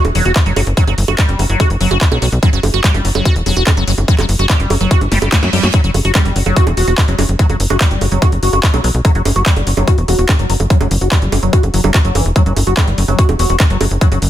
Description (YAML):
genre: psychedelic trance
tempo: 145 BPM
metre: 4/4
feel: straight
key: unclear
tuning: A4 = 441 Hz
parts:
  - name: liquid acid bass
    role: riff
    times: 0.0-14.2 s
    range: E3 to F#4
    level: -19 LUFS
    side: equal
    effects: phaser, auto-pan, sidechain pumping, dub echo
  - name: tight sequencer bass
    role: bass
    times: 0.0-14.3 s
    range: E1 to F#2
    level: -15 LUFS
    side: equal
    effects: none
  - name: techno drum kit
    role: drums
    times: 0.0-14.3 s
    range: bongos, handclaps, hi-hat, snare drum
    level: -19 LUFS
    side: right 2 dB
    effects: overdrive
  - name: electronic kick drum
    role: drums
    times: 0.4-14.1 s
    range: none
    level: -11 LUFS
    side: equal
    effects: none
  - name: reverse cymbal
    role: sound effects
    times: 5.1-5.7 s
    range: none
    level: -24 LUFS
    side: right 5 dB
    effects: none
room: digital ambience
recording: none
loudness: -11 LUFS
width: side -12 dB against mid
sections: 0.0-14.3 A section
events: reverse cymbal 5.1-5.7; drum fill 5.1-5.7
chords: 0.0 Emadd9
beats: 0.36 | 0.77 1.19 1.60 2.01 | 2.43 2.84 3.25 3.67 | 4.08 4.50 4.91 5.32 | 5.74 6.15 6.57 6.98 | 7.39 7.81 8.22 8.63 | 9.05 9.46 9.88 10.29 | 10.70 11.12 11.53 11.94 | 12.36 12.77 13.19 13.60 | 14.01